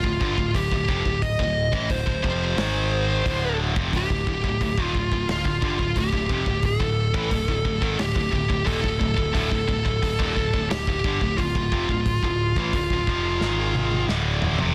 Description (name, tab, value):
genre	heavy metal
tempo	89 BPM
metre	4/4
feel	straight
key	D phrygian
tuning	A4 = 440 Hz
part	high-gain lead guitar	melody	0.0-14.0 s	F4 to Eb5	-29 LUFS	equal	distortion, tape echo
part	heavy high-gain guitar	riff	0.0-14.7 s	D2 to G#3	-29 LUFS	equal	distortion
part	modern bright picked electric bass	bass	0.0-14.7 s	D1 to A1	-30 LUFS	equal	none
part	modern studio drum kit	drums	0.0-14.7 s	hi-hat, kick drum, snare drum, toms	-30 LUFS	equal	none
room	little or no reverb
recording	dense, heavily limited modern master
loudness	-23 LUFS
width	mono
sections	0.0-14.7 A section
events	drum fill 13.4-14.7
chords	0.0 Dm; 2.6 G#5; 3.3 Dm; 13.4 G#5; 14.1 Dm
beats	0.55 | 1.23 1.90 2.58 3.26 | 3.93 4.61 5.29 5.96 | 6.64 7.32 7.99 8.67 | 9.35 10.02 10.70 11.38 | 12.05 12.73 13.41 14.09